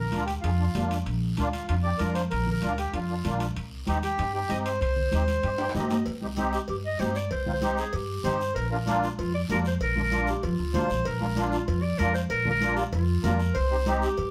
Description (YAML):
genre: latin, cumbia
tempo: 192 BPM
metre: 4/4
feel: straight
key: C minor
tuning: A4 = 440 Hz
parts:
  - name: accordion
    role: second line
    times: 0.0-5.7, 8.2-13.9 s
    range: F4 to Eb5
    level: -32 LUFS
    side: equal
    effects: none
  - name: upright bass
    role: bass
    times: 0.0-14.3 s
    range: Bb1 to G2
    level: -31 LUFS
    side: equal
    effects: none
  - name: musette accordion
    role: accompaniment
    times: 0.1-14.1 s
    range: Bb3 to G5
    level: -33 LUFS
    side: equal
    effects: none
  - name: congas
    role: percussion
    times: 0.1-14.0 s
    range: none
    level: -36 LUFS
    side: equal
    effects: none
  - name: guiro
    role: percussion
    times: 0.1-14.3 s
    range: none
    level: -47 LUFS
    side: equal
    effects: none
  - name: timbales and cowbell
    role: percussion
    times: 0.1-14.3 s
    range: none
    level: -38 LUFS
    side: equal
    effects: none
  - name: clear clarinet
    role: melody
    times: 6.5-14.3 s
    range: F4 to Eb5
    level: -32 LUFS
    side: equal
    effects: none
room: moderate studio reverb, RT60 0.5 s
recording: heard from further back in the room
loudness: -27 LUFS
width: mono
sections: 0.0-6.1 A section; 6.1-14.3 B section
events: accordion solo 0.0-6.1; accordion fill 5.4-6.1; drum fill 5.6-6.1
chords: 0.0 Bb; 3.6 Cm; 8.6 Bb; 13.5 Cm